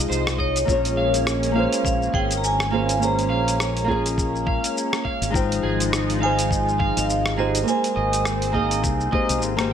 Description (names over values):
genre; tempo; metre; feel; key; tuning
sunset chillout; 103 BPM; 4/4; swing 57% on 16ths; Bb dorian; A4 = 436 Hz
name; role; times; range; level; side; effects
nylon-string guitar; accompaniment; 0.0-9.7 s; Ab3 to Ab5; -25 LUFS; moving between left 7 dB and right 8 dB; auto-pan, vintage 12-bit sampler grit, tape echo
lush unison pad; sustained chords; 0.0-9.7 s; F3 to Eb4; -29 LUFS; equal; chorus, phaser
modern bright fingered electric bass; bass; 0.0-9.7 s; Ab1 to C2; -26 LUFS; equal; none
electric guitar at the edge of break-up; arpeggios; 0.1-9.4 s; Ab4 to F5; -30 LUFS; right 4 dB; lush chorus, tape echo
dusty soul sampler-style drum kit; drums; 0.1-9.7 s; hi-hat, rim click, shaker; -27 LUFS; equal; studio reverb
vibraphone with hard mallets; melody; 0.4-9.4 s; Db5 to Bb5; -26 LUFS; equal; vintage 12-bit sampler grit, tape echo
electronic kick drum; drums; 0.4-9.3 s; none; -26 LUFS; equal; studio reverb
room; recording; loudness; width
light reverb, digital ambience; none; -19 LUFS; side -8 dB against mid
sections
0.0-9.7 A section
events
none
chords
0.0 Fm7; 0.7 Bbm7; 5.3 Fm7/Ab; 7.7 Abmaj7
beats
0.10 | 0.69 1.27 1.85 2.43 | 3.02 3.60 4.18 4.76 | 5.35 5.93 6.51 7.09 | 7.68 8.26 8.84 9.42